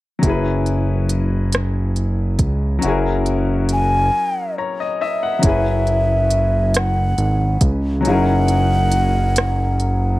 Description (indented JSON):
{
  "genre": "slow six-eight R&B",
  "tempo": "46 BPM (dotted quarters)",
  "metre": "6/8",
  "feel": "straight",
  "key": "unclear",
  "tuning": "A4 = 439 Hz",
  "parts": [
    { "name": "clear baby grand piano", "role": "accompaniment", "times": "0.2-10.2 s", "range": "F#3 to A#5", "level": "-23 LUFS", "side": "left 4 dB", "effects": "none" },
    { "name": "fat analog bass", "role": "bass", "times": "0.2-10.2 s", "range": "F#1 to C#2", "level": "-18 LUFS", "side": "equal", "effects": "none" },
    { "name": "smooth R&B drum kit", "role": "drums", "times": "0.2-10.0 s", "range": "hi-hat, kick drum, rim click", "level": "-19 LUFS", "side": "right 1 dB", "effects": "none" },
    { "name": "breathy alto ocarina", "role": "melody", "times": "3.7-10.2 s", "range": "E5 to G#5", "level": "-20 LUFS", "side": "equal", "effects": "slapback echo" }
  ],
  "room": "little or no reverb",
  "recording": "dry, close 1970s-style studio recording",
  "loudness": "-16 LUFS",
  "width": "side -17 dB against mid",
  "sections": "0.2-5.4 A section; 5.4-10.2 B section",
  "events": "break 4.1-5.4; grand piano fill 4.1-5.4",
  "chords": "0.2 F#7sus4; 2.8 F#9; 5.4 F#7sus4; 8.1 F#13"
}